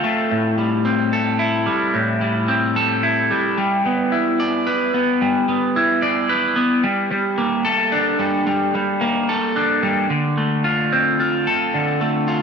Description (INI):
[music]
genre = rock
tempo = 110 BPM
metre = 3/4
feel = straight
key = D minor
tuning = A4 = 443 Hz
[part]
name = electric guitar at the edge of break-up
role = solo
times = 0.0-12.4 s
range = A2 to D5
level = -16 LUFS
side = equal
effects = phaser, slapback echo, tape echo
[sound]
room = moderate lush hall reverb, RT60 2.8 s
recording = big arena sound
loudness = -16 LUFS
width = side -6 dB against mid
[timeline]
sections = 0.0-10.1 A section; 10.1-12.4 B section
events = none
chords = 0.3 Am7; 3.6 Em7/G; 6.8 Gmadd9; 10.1 Dm7